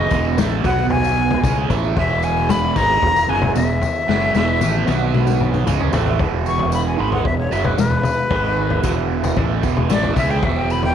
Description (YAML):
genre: psychedelic rock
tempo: 114 BPM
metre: 4/4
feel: straight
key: E major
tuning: A4 = 441 Hz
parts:
  - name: breathy bright jazz flute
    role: melody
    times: 0.0-10.9 s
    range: B4 to C#6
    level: -21 LUFS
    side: left 3 dB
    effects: slapback echo
  - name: percussive tonewheel organ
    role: sustained chords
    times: 0.0-10.9 s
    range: G#3 to B4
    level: -30 LUFS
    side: right 11 dB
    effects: slow rotary speaker, chorus vibrato
  - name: overdriven semi-hollow guitar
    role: riff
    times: 0.0-10.9 s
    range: E2 to C#4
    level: -22 LUFS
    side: right 13 dB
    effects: phaser
  - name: fuzz fingered electric bass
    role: bass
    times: 0.0-10.9 s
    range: E1 to C#2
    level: -22 LUFS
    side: equal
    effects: overdrive
  - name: raw garage drum kit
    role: drums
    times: 0.1-10.9 s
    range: kick drum, snare drum, toms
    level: -21 LUFS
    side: left 4 dB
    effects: none
  - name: tambourine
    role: percussion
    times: 0.1-10.8 s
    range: none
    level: -39 LUFS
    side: left 12 dB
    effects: none
room: light reverb, studio reverb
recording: 1960s-style stereo with parts hard left and right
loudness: -16 LUFS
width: side -9 dB against mid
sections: 0.0-6.2 A section; 6.2-10.9 B section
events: drum fill 4.1-6.2; flute solo 6.2-10.9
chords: 0.0 E; 0.6 B5; 1.4 E; 4.9 B5; 5.7 E; 8.3 G#5; 8.8 E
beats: 0.38 0.91 1.44 | 1.97 2.50 3.03 3.56 | 4.09 4.61 5.14 5.67 | 6.20 6.73 7.25 7.78 | 8.31 8.84 9.37 9.90 | 10.43